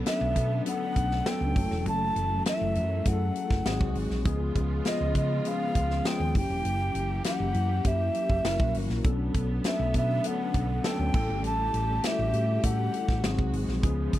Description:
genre	polished 1980s jazz-funk pop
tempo	100 BPM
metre	4/4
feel	straight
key	B minor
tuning	A4 = 440 Hz
part	mellow tine electric piano	accompaniment	0.0-14.2 s	E#3 to A#4	-31 LUFS	left 3 dB	ensemble chorus
part	rich symphonic string section	sustained chords	0.0-14.2 s	B#2 to G4	-38 LUFS	right 4 dB	none
part	breathy alto ocarina	melody	0.1-13.5 s	D#5 to A5	-31 LUFS	equal	slapback echo
part	modern studio drum kit	drums	0.1-14.2 s	crash cymbal, hi-hat, kick drum, snare drum	-29 LUFS	equal	none
part	hollow-body short-scale fingered electric bass	bass	0.2-14.2 s	E1 to C#3	-29 LUFS	right 1 dB	none
room	little or no reverb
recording	dry, close 1970s-style studio recording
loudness	-25 LUFS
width	side -14 dB against mid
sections	0.0-14.2 A section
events	none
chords	0.0 Bm9; 1.6 F#m7; 3.7 G#7; 4.3 C#7; 6.4 F#7b9; 8.4 F#7; 9.0 Bm9; 11.1 A7; 13.2 G#7

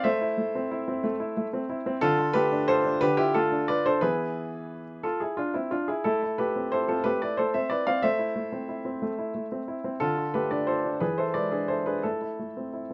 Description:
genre	classical-period piano sonatina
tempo	60 BPM (dotted quarters)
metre	6/8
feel	straight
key	A minor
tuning	A4 = 441 Hz
part	clear baby grand piano	solo	0.0-12.9 s	D3 to F5	-27 LUFS	equal	none
room	light reverb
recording	dark, warm production, nothing above 10.4 kHz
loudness	-27 LUFS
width	mono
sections	0.0-12.9 A section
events	none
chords	0.0 Am; 2.0 Dm; 4.0 E; 6.1 Am; 10.0 Dm; 11.0 E7; 12.0 Am

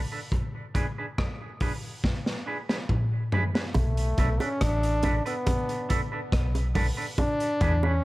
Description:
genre	dub reggae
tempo	70 BPM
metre	4/4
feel	straight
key	B dorian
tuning	A4 = 440 Hz
part	deep dub fingered electric bass	bass	0.0-8.0 s	A1 to E2	-25 LUFS	equal	none
part	clean electric guitar	accompaniment	0.1-7.9 s	D4 to B4	-34 LUFS	right 3 dB	vibrato effect, dub echo
part	crunchy breakbeat drum kit	drums	0.3-7.8 s	hi-hat, kick drum, rim click, snare drum, toms	-28 LUFS	equal	none
part	bongos	percussion	3.7-8.0 s	none	-35 LUFS	right 4 dB	dub echo
part	brilliant trombone	melody	3.8-8.0 s	A3 to D4	-30 LUFS	equal	dub echo
room	light reverb, small room ambience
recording	none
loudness	-25 LUFS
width	side -18 dB against mid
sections	0.0-3.8 A section; 3.8-8.0 B section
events	drum fill 2.0-3.8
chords	0.3 G#dim/D; 3.8 Bm7; 7.2 E7

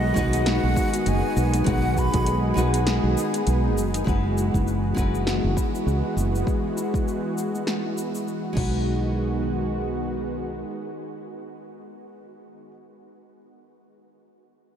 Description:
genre	sunset chillout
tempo	100 BPM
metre	4/4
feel	swing 57% on 16ths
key	B major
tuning	A4 = 440 Hz
part	breathy jazz flute	melody	0.0-2.6 s	D#5 to B5	-31 LUFS	right 2 dB	analog delay
part	nylon-string guitar	accompaniment	0.0-12.7 s	G#3 to B4	-31 LUFS	equal	auto-pan, diffuse ambient delay
part	lush unison pad	sustained chords	0.0-12.0 s	D#3 to G#4	-29 LUFS	right 1 dB	chorus
part	Celtic harp	arpeggios	0.0-12.0 s	G#3 to D#5	-31 LUFS	left 4 dB	low-pass filter, diffuse ambient delay
part	woody fretless electric bass	bass	0.0-10.6 s	F#1 to C#2	-24 LUFS	equal	none
part	deep house drum kit	drums	0.2-8.7 s	crash cymbal, hi-hat, shaker, snare drum	-32 LUFS	equal	overdrive
part	electronic kick drum	drums	0.2-8.7 s	none	-26 LUFS	equal	overdrive
room	moderate huge ambient reverb, RT60 9.1 s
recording	dreamy mix soaked in reverb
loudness	-21 LUFS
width	side -9 dB against mid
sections	0.0-4.1 A section; 4.1-8.9 B section; 8.9-11.3 C section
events	filter sweep on harp 4.1-8.9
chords	0.0 B6; 4.1 F#9sus4; 8.6 B6

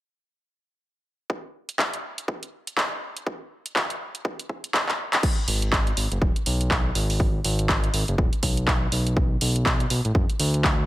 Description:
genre	deep house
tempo	122 BPM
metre	4/4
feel	swing 59% on 16ths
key	G# minor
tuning	A4 = 440 Hz
part	electronic kick drum	drums	1.3-10.8 s	none	-25 LUFS	equal	overdrive, high-pass filter on kick, high-pass filter on room
part	house drum kit	drums	1.7-10.8 s	crash cymbal, handclaps, hi-hat	-25 LUFS	equal	overdrive
part	smooth synth bass	bass	5.5-10.8 s	D#1 to D2	-24 LUFS	equal	tube saturation, sidechain pumping
room	little or no reverb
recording	none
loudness	-22 LUFS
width	side -16 dB against mid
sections	1.3-5.2 A section; 5.2-10.9 B section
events	drum fill 4.9-5.2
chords	none

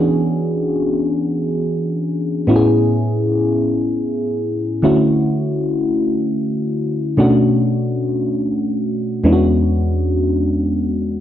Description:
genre	R&B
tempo	free time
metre	none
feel	none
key	unclear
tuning	A4 = 441 Hz
part	mellow FM electric piano	solo	0.0-11.2 s	E2 to G#4	-15 LUFS	equal	chorus, slapback echo
room	light reverb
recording	dark, warm production, nothing above 7.7 kHz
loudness	-15 LUFS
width	side -11 dB against mid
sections	0.0-11.2 A section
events	none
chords	0.0 E13; 2.5 Amaj9; 4.8 Dmaj9; 7.2 Bm9; 9.2 E13

